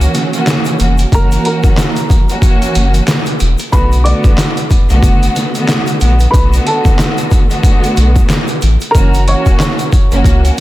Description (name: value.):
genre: hip hop, boom-bap hip-hop.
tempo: 92 BPM.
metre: 4/4.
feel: swing 58% on 16ths.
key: B minor.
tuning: A4 = 440 Hz.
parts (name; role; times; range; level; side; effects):
warm studio string section; accompaniment; 0.0-10.6 s; D3 to F#4; -17 LUFS; right 1 dB; cassette tape, high-pass filter, low-pass filter.
warm sub bass; bass; 0.0-10.5 s; E1 to C#2; -11 LUFS; equal; none.
trip hop sampler-style drum kit; drums; 0.0-10.6 s; handclaps, hi-hat, kick drum, snare drum; -12 LUFS; equal; overdrive.
tube shaker; percussion; 0.0-10.6 s; none; -34 LUFS; left 6 dB; none.
warm upright piano; melody; 1.1-10.4 s; A4 to D6; -19 LUFS; equal; high-pass filter, low-pass filter, digital delay.
room: studio ambience.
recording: dense, heavily limited modern master.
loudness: -9 LUFS.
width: side -16 dB against mid.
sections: 0.0-10.6 A section.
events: none.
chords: 0.0 F#7; 3.7 Bm7; 8.9 F#7.